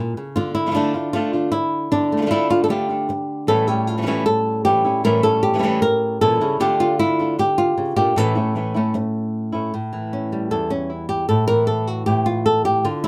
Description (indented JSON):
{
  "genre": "flamenco",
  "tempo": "154 BPM",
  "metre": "4/4",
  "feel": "straight",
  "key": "A phrygian dominant",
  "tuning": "A4 = 440 Hz",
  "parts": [
    { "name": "flamenco guitar", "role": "melody", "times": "0.0-13.1 s", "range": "E2 to Bb4", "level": "-20 LUFS", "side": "equal", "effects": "none" },
    { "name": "flamenco guitar", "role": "stabs", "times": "0.4-9.7 s", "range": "A2 to F4", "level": "-26 LUFS", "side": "equal", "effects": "none" }
  ],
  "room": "light reverb",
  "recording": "close, detailed microphones",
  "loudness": "-20 LUFS",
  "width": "mono",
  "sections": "0.0-9.7 A section; 9.7-13.1 B section",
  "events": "nylon-string guitar solo 9.7-13.1",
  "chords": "0.4 Dm; 3.5 A7; 6.6 Dm; 8.2 A; 9.7 A7"
}